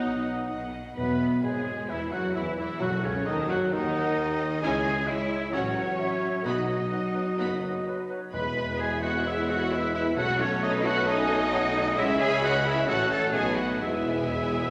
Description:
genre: classical, dramatic, fast romantic movement for symphony orchestra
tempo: 131 BPM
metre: 4/4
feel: rubato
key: E major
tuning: A4 = 439 Hz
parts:
  - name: warm symphonic violin section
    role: melody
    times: 0.0-14.7 s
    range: C#5 to B5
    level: -40 LUFS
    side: equal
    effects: none
  - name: bright large flute ensemble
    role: second line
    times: 0.0-14.7 s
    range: A4 to G#5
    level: -39 LUFS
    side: equal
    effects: none
  - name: clear oboe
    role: second line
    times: 0.0-14.7 s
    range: C#5 to B5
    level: -35 LUFS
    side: equal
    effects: none
  - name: rich symphonic violin section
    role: second line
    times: 0.0-14.7 s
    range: C#4 to B5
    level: -41 LUFS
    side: equal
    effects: none
  - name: warm clarinet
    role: second line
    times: 0.0-14.7 s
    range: C#4 to F#5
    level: -40 LUFS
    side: equal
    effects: none
  - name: mellow bassoon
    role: accompaniment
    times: 0.0-14.7 s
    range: C#3 to B3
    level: -40 LUFS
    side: equal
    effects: none
  - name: rich symphonic viola section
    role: accompaniment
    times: 0.0-14.7 s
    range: C#3 to A4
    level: -36 LUFS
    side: equal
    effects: none
  - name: mellow French horn section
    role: sustained chords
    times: 0.0-14.7 s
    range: C#3 to F#4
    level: -34 LUFS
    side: equal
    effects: none
  - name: rich symphonic cello section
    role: bass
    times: 0.0-14.7 s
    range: B2 to B4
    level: -34 LUFS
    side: equal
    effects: none
  - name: rich symphonic double bass section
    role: bass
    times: 0.0-14.7 s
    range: F#1 to B2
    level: -40 LUFS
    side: equal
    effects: none
  - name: warm tuba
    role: bass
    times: 1.0-14.7 s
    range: E1 to D#2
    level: -39 LUFS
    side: equal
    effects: none
  - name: timpani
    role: percussion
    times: 1.0-3.5, 6.5-10.8, 13.8-14.7 s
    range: E2 to B2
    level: -40 LUFS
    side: equal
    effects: none
room: wet scoring stage reverb, RT60 1.7 s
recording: none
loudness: -27 LUFS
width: mono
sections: 1.0-14.7 A section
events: timpani fill 13.8-14.7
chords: 0.0 B; 1.0 E; 2.8 F#m6; 4.6 C#m; 5.5 F#m/A; 6.5 B; 8.3 E; 10.2 B9; 12.0 C#m7; 12.9 F#m/A; 13.3 B7; 13.8 E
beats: 0.02 0.50 | 0.98 1.44 1.90 2.35 | 2.81 3.27 3.73 4.18 | 4.63 5.08 5.53 5.99 | 6.46 6.92 7.39 7.87 | 8.34 8.80 9.26 9.72 | 10.18 10.63 11.08 11.53 | 11.98 12.44 12.89 13.35 | 13.82 14.30

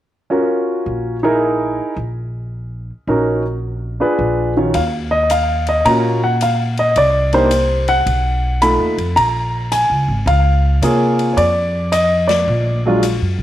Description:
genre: jazz piano trio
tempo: 109 BPM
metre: 4/4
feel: swing 66% on 8ths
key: Eb minor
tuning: A4 = 441 Hz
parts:
  - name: warm concert grand piano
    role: melody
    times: 0.3-13.0 s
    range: Eb3 to B5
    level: -15 LUFS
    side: equal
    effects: slapback echo
  - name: upright bass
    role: bass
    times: 0.9-13.4 s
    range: Ab1 to C3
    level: -19 LUFS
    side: equal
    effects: none
  - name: swinging big-band drum kit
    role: drums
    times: 4.7-13.2 s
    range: hi-hat, ride cymbal, snare drum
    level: -29 LUFS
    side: left 8 dB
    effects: none
room: moderate spring reverb, RT60 1.9 s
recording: 1960s-style stereo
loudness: -14 LUFS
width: side -12 dB against mid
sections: 0.3-4.7 A section; 4.7-13.4 B section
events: band accent 12.2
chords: 0.3 Ebm9 (rootless); 4.7 Ebmadd9; 7.0 Csus2; 8.1 B7#11; 9.2 Bbm7; 11.4 Dm/F; 12.5 Bbaug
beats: | 0.30 0.86 1.41 1.97 | 2.53 3.08 3.64 4.19 | 4.75 5.30 5.85 6.41 | 6.96 7.51 8.06 8.62 | 9.17 9.72 10.27 10.82 | 11.38 11.93 12.48 13.03

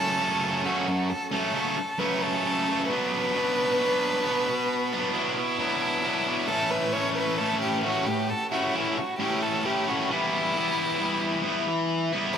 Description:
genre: rock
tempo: 67 BPM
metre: 4/4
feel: straight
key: B minor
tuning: A4 = 440 Hz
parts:
  - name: rich violin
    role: melody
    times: 0.0-12.4 s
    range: E4 to C#5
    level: -27 LUFS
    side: equal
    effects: analog delay
  - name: distorted electric guitar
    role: riff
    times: 0.0-12.4 s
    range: F#2 to E4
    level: -26 LUFS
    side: equal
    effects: overdrive
room: wet huge ambient reverb, RT60 4.6 s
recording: dreamy mix soaked in reverb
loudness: -24 LUFS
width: side -8 dB against mid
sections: 0.0-12.4 A section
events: none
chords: 0.0 F#m; 2.9 Bm; 6.5 A; 10.1 Em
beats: 0.22 1.12 2.02 | 2.91 3.81 4.71 5.61 | 6.51 7.41 8.30 9.20 | 10.10 10.99 11.89

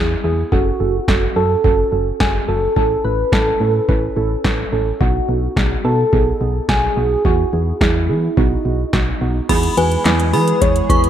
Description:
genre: synth-pop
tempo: 107 BPM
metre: 4/4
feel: straight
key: E major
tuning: A4 = 439 Hz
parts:
  - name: muted felt-like synth keys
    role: accompaniment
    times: 0.0-11.1 s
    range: B3 to B4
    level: -21 LUFS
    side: right 6 dB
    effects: chorus, analog delay
  - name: solid FM bass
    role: bass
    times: 0.0-11.1 s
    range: F#1 to E3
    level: -20 LUFS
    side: equal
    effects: none
  - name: soft struck synth lead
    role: melody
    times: 0.5-11.1 s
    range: D#4 to C#5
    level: -20 LUFS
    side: equal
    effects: chorus, phaser, analog delay
  - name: electro analog drum machine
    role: drums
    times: 0.5-11.1 s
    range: crash cymbal, handclaps, hi-hat, kick drum, snare drum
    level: -19 LUFS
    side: equal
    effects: analog delay
  - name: synth chime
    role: second line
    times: 9.5-11.0 s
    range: G#5 to C#6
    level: -20 LUFS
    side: equal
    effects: ensemble chorus, analog delay
  - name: chorused pulse-width pad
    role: sustained chords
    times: 9.5-11.1 s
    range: E3 to G#4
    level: -25 LUFS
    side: left 2 dB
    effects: none
room: moderate spring reverb, RT60 1.6 s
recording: echo-heavy mix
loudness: -14 LUFS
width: side -10 dB against mid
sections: 0.0-9.5 A section; 9.5-11.1 B section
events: none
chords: 0.0 E; 0.5 F#m; 2.8 Aadd9; 5.0 B; 7.3 E; 8.4 B; 9.5 E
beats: | 0.52 1.08 1.64 2.20 | 2.77 3.33 3.89 4.45 | 5.01 5.57 6.13 6.69 | 7.25 7.81 8.37 8.93 | 9.49 10.05 10.62

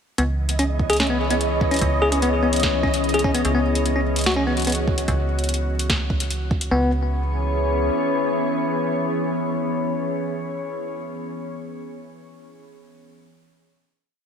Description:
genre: IDM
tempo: 147 BPM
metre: 4/4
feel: straight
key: C# minor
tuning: A4 = 441 Hz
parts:
  - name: glassy FM pad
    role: sustained chords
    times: 0.3-10.7 s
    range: E3 to C#5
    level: -24 LUFS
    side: left 2 dB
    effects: ensemble chorus, built-in reverb, vintage 12-bit sampler grit
  - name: bell-like tine electric piano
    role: arpeggios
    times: 0.2-6.9 s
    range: B3 to G#4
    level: -24 LUFS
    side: left 1 dB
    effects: vintage 12-bit sampler grit, ping-pong delay
  - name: metallic FM bass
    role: bass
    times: 0.2-7.9 s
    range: C#2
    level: -24 LUFS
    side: right 1 dB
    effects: none
  - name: booming analog drum machine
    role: drums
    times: 0.2-6.7 s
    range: hi-hat, snare drum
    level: -26 LUFS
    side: equal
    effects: small room reverb, ping-pong delay
  - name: bubbling stepped-filter texture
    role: texture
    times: 0.2-5.1 s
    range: D#5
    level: -29 LUFS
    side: right 4 dB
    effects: chorus, built-in reverb
  - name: electronic kick drum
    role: drums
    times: 0.8-6.6 s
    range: none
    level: -24 LUFS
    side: right 1 dB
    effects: small room reverb
room: moderate huge ambient reverb, RT60 4.4 s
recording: none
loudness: -19 LUFS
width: side -7 dB against mid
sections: 0.2-6.7 groove; 6.7-10.0 final chord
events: none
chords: 0.2 C#m7; 3.4 F#7sus4/C#; 5.1 N.C.; 6.7 C#m7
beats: | 0.18 0.59 1.00 1.41 | 1.81 2.22 2.63 3.04 | 3.45 3.86 4.26 4.67 | 5.08 5.49 5.90 6.30 | 6.71 7.12 7.53 7.94 | 8.35 8.75 9.16 9.57

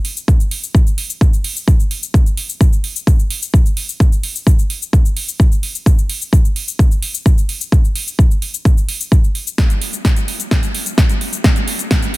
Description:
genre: EDM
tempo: 129 BPM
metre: 4/4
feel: straight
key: none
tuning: none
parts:
  - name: big-room dance drum kit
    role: drums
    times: 0.0-12.2 s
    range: hi-hat, shaker, snare drum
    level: -21 LUFS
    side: equal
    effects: none
  - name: electronic kick drum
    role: drums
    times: 0.3-12.0 s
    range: none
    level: -11 LUFS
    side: equal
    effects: none
room: little or no reverb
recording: dense, heavily limited modern master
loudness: -13 LUFS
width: side -20 dB against mid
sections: 0.0-9.6 A section; 9.6-12.2 B section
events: build-up 9.6-12.2; drum fill 9.6-12.2; filter sweep 9.6-12.2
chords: none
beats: | 0.28 0.75 1.21 1.68 | 2.14 2.61 3.07 3.54 | 4.00 4.47 4.93 5.40 | 5.86 6.33 6.79 7.26 | 7.72 8.19 8.65 9.12 | 9.58 10.05 10.51 10.98 | 11.44 11.91

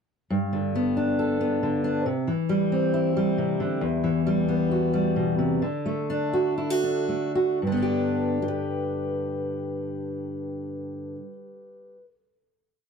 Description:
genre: folk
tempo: 111-137 BPM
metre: 4/4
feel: straight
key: G major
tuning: A4 = 440 Hz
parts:
  - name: fingerpicked steel-string acoustic guitar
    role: solo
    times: 0.3-12.0 s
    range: E2 to B4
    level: -24 LUFS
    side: equal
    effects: none
room: light reverb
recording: dark, warm production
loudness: -23 LUFS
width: side -6 dB against mid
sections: 0.3-7.6 breakdown; 7.6-11.9 final chord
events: slowing down 3.8-7.6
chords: 0.3 Gadd9; 2.1 C; 3.8 Emadd9; 5.6 D; 7.6 G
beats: | 0.31 0.74 1.18 1.62 | 2.06 2.50 2.94 3.37 | 3.81 4.25 4.70 5.15 | 5.61 6.08 6.57 7.08 | 7.60 8.14 8.69 9.22 | 9.77 10.30 10.84 11.38

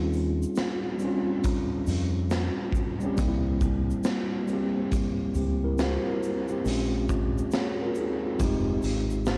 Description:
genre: lo-fi hip hop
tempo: 69 BPM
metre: 4/4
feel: swing 64% on 16ths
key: unclear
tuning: A4 = 445 Hz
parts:
  - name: mellow tine electric piano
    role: accompaniment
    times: 0.0-9.4 s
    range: G3 to Db5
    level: -30 LUFS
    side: equal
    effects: cassette tape, low-pass filter
  - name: deep dub fingered electric bass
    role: bass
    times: 0.0-9.4 s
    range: F1 to F2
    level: -31 LUFS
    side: equal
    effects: none
  - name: tube shaker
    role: percussion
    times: 0.1-9.4 s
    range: none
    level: -52 LUFS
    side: equal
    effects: none
  - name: raw garage drum kit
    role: drums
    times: 0.2-9.4 s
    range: hi-hat, kick drum, shaker, snare drum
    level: -32 LUFS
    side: equal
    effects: cassette tape
room: studio reverb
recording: home recording on cassette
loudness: -27 LUFS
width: mono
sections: 0.0-9.4 A section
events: none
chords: 0.0 Eb13; 3.2 C7; 6.7 Bbm7; 8.4 Fm9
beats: 0.57 1.44 2.31 | 3.17 4.04 4.91 5.78 | 6.65 7.52 8.39 9.26

